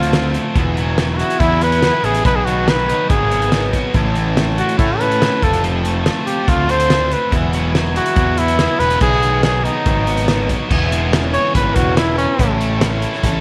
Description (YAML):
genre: indie rock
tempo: 142 BPM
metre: 4/4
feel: straight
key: unclear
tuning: A4 = 440 Hz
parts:
  - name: warm trumpet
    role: melody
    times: 0.0-12.6 s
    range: C#4 to C#5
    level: -21 LUFS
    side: equal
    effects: tape echo
  - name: biting overdriven guitar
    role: riff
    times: 0.0-13.4 s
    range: A2 to B4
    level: -25 LUFS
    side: equal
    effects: spring reverb
  - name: thick fuzz guitar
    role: riff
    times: 0.0-13.4 s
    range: F#3 to A4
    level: -27 LUFS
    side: equal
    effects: distortion, lush chorus, tape echo
  - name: fuzz picked electric bass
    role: bass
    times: 0.0-13.4 s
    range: E1 to A2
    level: -22 LUFS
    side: equal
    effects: overdrive
  - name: loose indie drum kit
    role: drums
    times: 0.0-13.3 s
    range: crash cymbal, hi-hat, kick drum, snare drum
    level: -22 LUFS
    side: equal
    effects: none
room: light reverb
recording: none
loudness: -16 LUFS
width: mono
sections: 0.0-10.7 A section; 10.7-13.4 B section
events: trumpet solo 10.7-13.4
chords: 0.0 F; 0.6 Eadd9; 2.3 B6; 3.9 A; 5.4 F; 7.3 Eadd9; 9.0 B6; 10.7 E6; 12.4 A